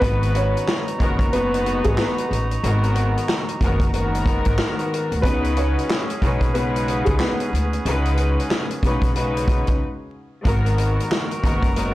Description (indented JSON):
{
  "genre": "hip hop, boom-bap hip-hop",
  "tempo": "92 BPM",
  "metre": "4/4",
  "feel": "swing 62% on 16ths",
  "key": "G# minor",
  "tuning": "A4 = 439 Hz",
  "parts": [
    { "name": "warm upright piano", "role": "melody", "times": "0.0-7.5 s", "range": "G#3 to C#5", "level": "-25 LUFS", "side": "equal", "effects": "high-pass filter, low-pass filter, plate reverb, digital delay" },
    { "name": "warm studio string section", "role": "accompaniment", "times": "0.0-11.9 s", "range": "G#2 to B4", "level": "-24 LUFS", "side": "left 2 dB", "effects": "cassette tape, high-pass filter, low-pass filter, plate reverb" },
    { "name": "clear horn section", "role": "stabs", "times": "0.0-11.9 s", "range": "B3 to A#5", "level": "-32 LUFS", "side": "right 2 dB", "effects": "high-pass filter, low-pass filter, plate reverb, digital delay" },
    { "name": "upright bass", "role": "bass", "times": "0.0-11.9 s", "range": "F#1 to D2", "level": "-22 LUFS", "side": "equal", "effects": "transformer saturation" },
    { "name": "vintage drum kit", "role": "drums", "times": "0.0-11.9 s", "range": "handclaps, hi-hat, kick drum, snare drum", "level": "-22 LUFS", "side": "equal", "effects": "none" }
  ],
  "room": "light reverb",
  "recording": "blown-out, overdriven recording, vinyl crackle, overdrive",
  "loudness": "-18 LUFS",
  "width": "side -16 dB against mid",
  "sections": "0.0-11.9 A section",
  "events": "break 9.8-10.5",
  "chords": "0.0 G#m7; 5.2 C#7sus4; 10.5 G#m7",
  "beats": "| 0.02 0.67 1.32 1.98 | 2.63 3.28 3.93 4.58 | 5.24 5.89 6.54 7.19 | 7.84 8.50 9.15 9.80 | 10.45 11.11 11.76"
}